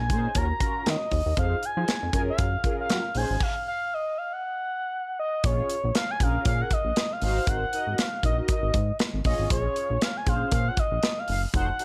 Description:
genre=early-eighties boogie funk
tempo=118 BPM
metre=4/4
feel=swing 56% on 16ths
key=Bb minor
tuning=A4 = 440 Hz
part: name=expressive synth lead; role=melody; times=0.0-11.8 s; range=Db5 to Bb5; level=-31 LUFS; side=equal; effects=chorus
part: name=chorused synth bass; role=bass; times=0.0-11.7 s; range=F1 to Gb3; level=-30 LUFS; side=equal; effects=none
part: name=mellow synth brass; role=accompaniment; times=0.1-11.8 s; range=Db4 to Eb5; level=-36 LUFS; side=equal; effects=chorus, phaser
part: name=modern studio drum kit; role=drums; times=0.1-11.8 s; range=crash cymbal, hi-hat, kick drum, snare drum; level=-30 LUFS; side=equal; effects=none
room=light reverb, small room ambience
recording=none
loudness=-26 LUFS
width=mono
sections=0.0-5.4 A section; 5.4-11.8 B section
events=stop 3.4-5.4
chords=0.4 Ebm7; 1.4 Fm7; 2.1 Gbmaj9; 3.2 Bbm11; 4.4 N.C.; 5.4 Bbm7; 7.2 Ab9; 9.3 Bbm7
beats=0.35 0.86 | 1.37 1.88 2.39 2.90 | 3.40 3.91 4.42 4.93 | 5.44 5.95 6.46 6.96 | 7.47 7.98 8.49 9.00 | 9.51 10.02 10.52 11.03 | 11.54

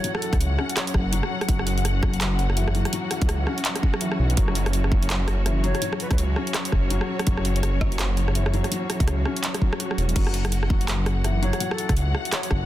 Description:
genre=half-time drum and bass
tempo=166 BPM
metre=4/4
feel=swing 60% on 16ths, half-time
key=unclear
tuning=A4 = 441 Hz
part: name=mellow silver concert flute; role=melody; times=0.0-0.9, 5.6-6.2, 11.4-12.5 s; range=A4 to C#5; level=-34 LUFS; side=left 1 dB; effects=vintage 12-bit sampler grit, digital delay
part: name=muted studio string section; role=sustained chords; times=0.0-12.7 s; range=F#3 to F#5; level=-30 LUFS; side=equal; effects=sidechain pumping
part: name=felt-muted upright piano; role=arpeggios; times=0.0-12.7 s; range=E3 to F#4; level=-31 LUFS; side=left 5 dB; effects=digital delay
part: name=drum and bass drum kit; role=drums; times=0.0-12.6 s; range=crash cymbal, handclaps, hi-hat, rim click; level=-28 LUFS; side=right 1 dB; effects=soft clipping on snare
part: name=dark detuned saw bass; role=bass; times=0.3-12.7 s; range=E1 to C#2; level=-23 LUFS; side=equal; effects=none
part: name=electronic kick drum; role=drums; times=0.3-12.6 s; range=none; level=-22 LUFS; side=equal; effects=none
room=little or no reverb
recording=dense, heavily limited modern master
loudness=-21 LUFS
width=side -14 dB against mid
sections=0.0-12.7 A section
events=none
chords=0.0 F#5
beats=| 0.04 0.40 0.76 1.12 | 1.48 1.85 2.21 2.57 | 2.93 3.29 3.65 4.01 | 4.38 4.74 5.10 5.46 | 5.82 6.18 6.54 6.91 | 7.27 7.63 7.99 8.35 | 8.71 9.07 9.44 9.80 | 10.16 10.52 10.88 11.24 | 11.61 11.97 12.33

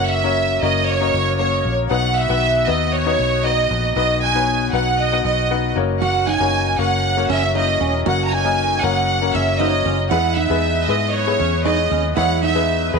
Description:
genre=piano-driven pop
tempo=117 BPM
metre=4/4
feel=straight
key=F# mixolydian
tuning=A4 = 439 Hz
part: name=clear studio violin section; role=melody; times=0.0-13.0 s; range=B4 to A#5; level=-19 LUFS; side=right 4 dB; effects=none
part: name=clear upright piano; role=accompaniment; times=0.0-13.0 s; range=B2 to F#5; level=-21 LUFS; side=left 11 dB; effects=none
part: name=vintage muted fingered electric bass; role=bass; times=0.0-13.0 s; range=E1 to G#2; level=-22 LUFS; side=right 1 dB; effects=none
part: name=picked steel-string acoustic guitar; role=riff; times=6.0-12.9 s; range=C#4 to F#4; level=-24 LUFS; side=right 14 dB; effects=none
room=moderate echo chamber reverb, RT60 2.5 s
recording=1960s-style stereo with parts hard left and right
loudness=-16 LUFS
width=side -4 dB against mid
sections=0.0-13.0 A section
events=none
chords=0.0 F#; 1.9 B; 5.8 F#; 10.1 E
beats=0.37 0.89 1.40 | 1.91 2.42 2.94 3.45 | 3.96 4.47 4.99 5.50 | 6.01 6.53 7.04 7.55 | 8.06 8.58 9.09 9.60 | 10.12 10.63 11.14 11.65 | 12.17 12.68

